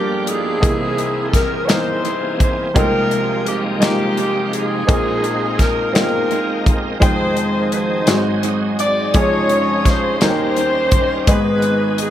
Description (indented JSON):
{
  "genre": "slow gospel",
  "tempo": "56 BPM (dotted quarters)",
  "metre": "6/8",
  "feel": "straight",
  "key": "unclear",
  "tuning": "A4 = 439 Hz",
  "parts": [
    { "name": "breathy alto saxophone", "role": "melody", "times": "0.0-12.1 s", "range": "G4 to D5", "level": "-23 LUFS", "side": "right 2 dB", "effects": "analog delay" },
    { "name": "mellow saxophone section", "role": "melody", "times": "0.0-12.1 s", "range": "Bb3 to D5", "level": "-22 LUFS", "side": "left 3 dB", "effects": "analog delay" },
    { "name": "clear upright piano", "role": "accompaniment", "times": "0.0-12.1 s", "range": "F1 to G5", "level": "-20 LUFS", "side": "equal", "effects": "analog delay" },
    { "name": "bright tonewheel organ", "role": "sustained chords", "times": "0.0-12.1 s", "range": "C3 to G5", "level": "-25 LUFS", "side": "right 2 dB", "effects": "slow rotary speaker, chorus vibrato" },
    { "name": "modern studio drum kit", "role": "drums", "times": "0.3-12.1 s", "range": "hi-hat, kick drum, snare drum", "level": "-18 LUFS", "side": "equal", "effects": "analog delay" }
  ],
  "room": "light reverb",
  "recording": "echo-heavy mix",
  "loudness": "-15 LUFS",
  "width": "side -11 dB against mid",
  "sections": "0.0-12.1 A section",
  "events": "none",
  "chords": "0.0 Gm7; 0.6 C7alt; 2.8 Fm11/C; 4.9 Bb9sus4; 7.0 Fm9; 8.1 Ab7; 9.2 Dbadd9/F; 10.2 Eb7; 11.3 Abm"
}